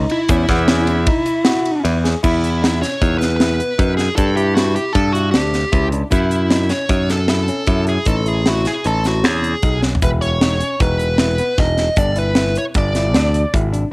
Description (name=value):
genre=progressive instrumental, band music in an uneven meter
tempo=154 BPM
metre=5/4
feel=straight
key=unclear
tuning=A4 = 440 Hz
part: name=bell-like tine electric piano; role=arpeggios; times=0.0-13.9 s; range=B3 to G#4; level=-24 LUFS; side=left 2 dB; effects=lush chorus
part: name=modern bright picked electric bass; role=bass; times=0.0-13.8 s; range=E1 to G2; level=-18 LUFS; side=equal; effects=none
part: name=dark smooth lead guitar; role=melody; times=0.1-13.5 s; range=E4 to D#5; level=-20 LUFS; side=equal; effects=overdrive, cassette tape
part: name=tight metal drum kit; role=drums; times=0.1-13.8 s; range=crash cymbal, hi-hat, kick drum, ride cymbal, snare drum, toms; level=-19 LUFS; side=equal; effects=cassette tape
part: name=tube shaker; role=percussion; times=0.3-12.2 s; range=none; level=-40 LUFS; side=right 4 dB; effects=none
room=light reverb, small room reverb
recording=home recording on cassette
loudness=-14 LUFS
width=side -25 dB against mid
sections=0.0-2.2 A section; 2.2-13.9 B section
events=drum fill 9.8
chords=0.3 E5; 4.2 G5; 6.1 F#m7; 8.1 Amaj7; 10.0 E5; 12.0 G5